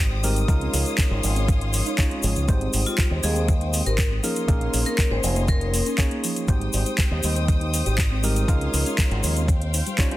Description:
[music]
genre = nu-disco, nu disco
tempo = 120 BPM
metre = 4/4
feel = straight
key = Ab major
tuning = A4 = 440 Hz
[part]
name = tine electric piano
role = accompaniment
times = 0.0-10.2 s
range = G3 to Db5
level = -29 LUFS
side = right 1 dB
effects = sidechain pumping, tape echo
[part]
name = rich studio string section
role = sustained chords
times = 0.0-10.2 s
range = C5 to Eb6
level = -33 LUFS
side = left 4 dB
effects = sidechain pumping
[part]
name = soft round pluck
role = arpeggios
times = 0.0-10.1 s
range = F3 to G4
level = -34 LUFS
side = right 1 dB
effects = analog chorus, sidechain pumping, digital delay
[part]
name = fingered electric bass with an envelope filter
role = bass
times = 0.0-9.8 s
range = F1 to Eb2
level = -24 LUFS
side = equal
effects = none
[part]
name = house drum kit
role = drums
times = 0.2-10.2 s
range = handclaps, hi-hat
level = -28 LUFS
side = equal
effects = overdrive
[part]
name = cabasa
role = percussion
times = 0.2-10.1 s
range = none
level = -33 LUFS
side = left 3 dB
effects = none
[part]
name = electronic kick drum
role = drums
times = 0.5-10.1 s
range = none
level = -21 LUFS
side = equal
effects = none
[part]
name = vibraphone with hard mallets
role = melody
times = 2.9-5.9 s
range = F4 to C5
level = -30 LUFS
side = left 3 dB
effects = digital delay
[sound]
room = digital ambience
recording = dense, heavily limited modern master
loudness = -20 LUFS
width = side -16 dB against mid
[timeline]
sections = 0.0-10.2 A section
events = none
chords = 0.5 Dbmaj9; 2.5 Abmaj7; 4.2 Bbm11; 6.5 Abmaj7; 8.5 Dbmaj9; 9.5 Eb13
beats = | 0.49 0.99 1.49 1.99 | 2.49 2.99 3.49 3.99 | 4.49 4.99 5.49 5.99 | 6.49 6.99 7.49 7.99 | 8.49 8.99 9.49 9.99

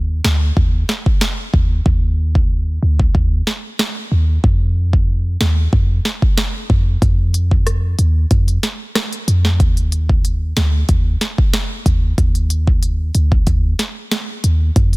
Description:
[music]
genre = dancehall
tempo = 93 BPM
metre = 4/4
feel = straight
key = unclear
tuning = A4 = 439 Hz
[part]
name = clean 808-style bass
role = bass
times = 0.0-15.0 s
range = D2 to F2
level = -15 LUFS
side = equal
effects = none
[part]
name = afro-pop drum kit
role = drums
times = 0.2-15.0 s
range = hi-hat, kick drum, rim click, snare drum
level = -16 LUFS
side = equal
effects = soft clipping on snare
[sound]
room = digital ambience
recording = dense, heavily limited modern master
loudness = -14 LUFS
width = side -24 dB against mid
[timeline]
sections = 0.0-15.0 A section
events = none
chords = none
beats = 0.57 1.21 | 1.86 2.50 3.15 3.79 | 4.44 5.08 5.73 6.37 | 7.02 7.66 8.31 8.96 | 9.60 10.24 10.89 11.54 | 12.18 12.83 13.47 14.12 | 14.76

